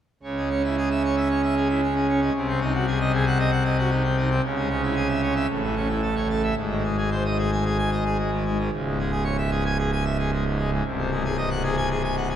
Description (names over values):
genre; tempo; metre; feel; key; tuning
classical, organ toccata; 114 BPM; 4/4; straight; C# minor; A4 = 439 Hz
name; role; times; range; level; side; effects
pipe organ, full organ; solo; 0.2-12.4 s; B#0 to G#5; -21 LUFS; equal; none
room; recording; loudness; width
wet cathedral reverb, RT60 6.5 s; none; -21 LUFS; side -10 dB against mid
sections
0.2-12.4 A section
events
none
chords
0.2 C#m; 2.3 G#7/B#; 4.4 C#m; 5.5 A; 6.6 G#; 8.7 C#m; 10.9 G#7/B#